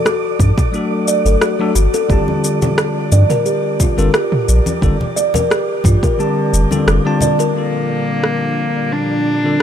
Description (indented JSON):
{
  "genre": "organic downtempo",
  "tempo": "88 BPM",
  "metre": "4/4",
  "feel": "swing 53% on 16ths",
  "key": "G minor",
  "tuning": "A4 = 444 Hz",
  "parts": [
    { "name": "kalimba", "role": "arpeggios", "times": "0.0-7.5 s", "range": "F4 to D5", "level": "-19 LUFS", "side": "equal", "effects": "tape echo, shimmer reverb" },
    { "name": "wind-like tuned noise texture", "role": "texture", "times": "0.0-9.6 s", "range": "D5", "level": "-27 LUFS", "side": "right 6 dB", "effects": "built-in reverb, shimmer reverb" },
    { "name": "deep house drum kit", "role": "drums", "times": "0.1-9.6 s", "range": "rim click, shaker, toms", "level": "-20 LUFS", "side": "equal", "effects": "overdrive" },
    { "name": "warm sub bass", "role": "bass", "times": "0.4-7.0 s", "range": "F1 to G2", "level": "-13 LUFS", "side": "equal", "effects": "sidechain pumping" },
    { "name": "electronic kick drum", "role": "drums", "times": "0.4-6.2 s", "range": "none", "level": "-16 LUFS", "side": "equal", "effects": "overdrive" },
    { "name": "congas and bongos", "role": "percussion", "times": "0.4-7.5 s", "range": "none", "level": "-23 LUFS", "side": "left 2 dB", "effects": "none" },
    { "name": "bell-like tine electric piano", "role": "accompaniment", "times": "0.7-9.6 s", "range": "D3 to A5", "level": "-20 LUFS", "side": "left 3 dB", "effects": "sidechain pumping, tape echo, shimmer reverb" },
    { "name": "warm cello", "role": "melody", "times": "7.6-9.6 s", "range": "Bb3 to D4", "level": "-20 LUFS", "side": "left 1 dB", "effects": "shimmer reverb" },
    { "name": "warm analog pad", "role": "sustained chords", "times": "7.6-9.6 s", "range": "Bb2 to D4", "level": "-24 LUFS", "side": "right 1 dB", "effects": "chorus, sidechain pumping" }
  ],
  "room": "light reverb",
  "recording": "none",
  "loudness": "-13 LUFS",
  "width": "side -9 dB against mid",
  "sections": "0.0-7.6 A section; 7.6-9.6 B section",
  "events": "none",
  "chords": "0.0 D/G; 2.1 F69; 7.6 Gm7",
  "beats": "0.06 0.74 1.42 | 2.10 2.78 3.46 4.15 | 4.83 5.51 6.19 6.87 | 7.56 8.24 8.92 9.60"
}